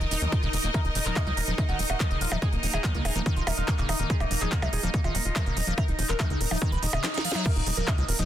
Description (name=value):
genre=psychedelic trance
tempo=143 BPM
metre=4/4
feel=straight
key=unclear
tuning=A4 = 439 Hz
part: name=overtone-sweeping drone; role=sustained chords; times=0.0-8.3 s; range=Bb3 to Bb4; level=-36 LUFS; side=equal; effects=chorus, built-in reverb, sidechain pumping
part: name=liquid acid bass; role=riff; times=0.0-8.3 s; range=Db3 to F4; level=-35 LUFS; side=left 1 dB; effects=chorus, auto-pan, sidechain pumping, ping-pong delay
part: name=tight sequencer bass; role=bass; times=0.0-8.2 s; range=Eb1 to Eb2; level=-29 LUFS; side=equal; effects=none
part: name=techno drum kit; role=drums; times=0.0-8.3 s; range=crash cymbal, handclaps, hi-hat, percussion blips, snare drum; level=-31 LUFS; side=right 1 dB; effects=none
part: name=bright studio string section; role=texture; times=0.0-7.5 s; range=Eb4 to Eb5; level=-37 LUFS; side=left 1 dB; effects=sidechain pumping
part: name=electronic kick drum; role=drums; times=0.3-8.0 s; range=none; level=-27 LUFS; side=equal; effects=none
part: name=overdriven synth lead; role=melody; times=0.7-8.3 s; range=Bb3 to F5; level=-34 LUFS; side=equal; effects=phaser, sidechain pumping, ping-pong delay
part: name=reverse cymbal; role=sound effects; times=6.8-7.5 s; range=none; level=-38 LUFS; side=right 8 dB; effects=none
room=little or no reverb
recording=dense, heavily limited modern master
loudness=-24 LUFS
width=side -11 dB against mid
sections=0.0-7.5 A section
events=reverse cymbal 6.8-7.5; drum fill 7.0-7.5; band accent 7.3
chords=0.0 Eb5